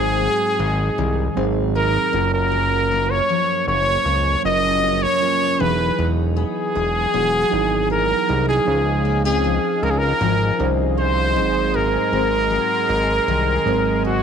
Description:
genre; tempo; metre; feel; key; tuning
indie pop, bedroom pop; 78 BPM; 4/4; straight; unclear; A4 = 441 Hz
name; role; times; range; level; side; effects
clear trumpet; melody; 0.0-14.2 s; Gb4 to Eb5; -20 LUFS; equal; analog chorus, slapback echo
mellow tine electric piano; accompaniment; 0.0-14.2 s; Eb3 to C5; -25 LUFS; right 15 dB; medium stereo tremolo
picked steel-string acoustic guitar; accompaniment; 0.0-14.2 s; Gb2 to G#4; -26 LUFS; left 12 dB; analog chorus, warbly pitch drift
fat analog bass; bass; 0.0-14.2 s; E1 to Db2; -22 LUFS; equal; none
lush unison pad; sustained chords; 8.7-14.2 s; Ab4 to C6; -31 LUFS; equal; chorus
room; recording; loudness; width
light reverb, small room ambience; 1960s-style stereo with parts hard left and right; -17 LUFS; side -7 dB against mid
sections
0.0-14.2 A section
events
none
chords
0.0 Ab7; 2.1 Gbmaj7; 5.6 Emaj9; 8.7 Dbmaj9; 11.4 Ab7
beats
0.21 0.98 1.75 | 2.52 3.29 4.06 4.83 | 5.60 6.37 7.13 7.90 | 8.67 9.44 10.21 10.97 | 11.74 12.51 13.28 14.04

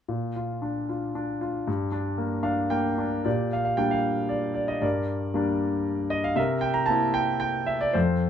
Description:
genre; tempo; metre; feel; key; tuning
classical, lyrical solo piano; 115 BPM; 3/4; rubato; Bb major; A4 = 441 Hz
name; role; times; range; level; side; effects
warm concert grand piano; solo; 0.1-8.3 s; F2 to Bb5; -24 LUFS; equal; none
room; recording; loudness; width
light reverb; close, detailed microphones; -24 LUFS; side -8 dB against mid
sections
0.1-3.3 A section; 3.3-8.3 B section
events
grand piano fill 2.2-3.3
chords
0.1 Bb; 1.7 Gm; 3.3 Bb6; 4.8 Gm; 6.4 C7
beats
| 0.10 0.65 1.17 | 1.68 2.19 2.72 | 3.26 3.80 4.32 | 4.84 5.36 5.87 | 6.38 6.89 7.42 | 7.95

